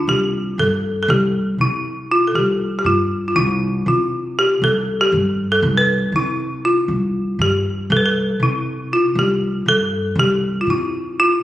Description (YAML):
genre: Turkish makam ensemble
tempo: 238 BPM (eighths)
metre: 9/8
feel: straight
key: C makam rast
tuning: A4 = 438 Hz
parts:
  - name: folk marimba with hard mallets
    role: melody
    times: 0.0-11.4 s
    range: E4 to B4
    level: -17 LUFS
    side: equal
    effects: none
  - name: upright bass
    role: bass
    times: 0.1-11.3 s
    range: C2 to C3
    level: -21 LUFS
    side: equal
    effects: none
room: wet recital hall reverb, RT60 1.5 s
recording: recorded on a phone in the room, studio reverb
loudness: -16 LUFS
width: side -14 dB against mid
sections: 0.1-11.4 A section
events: none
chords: none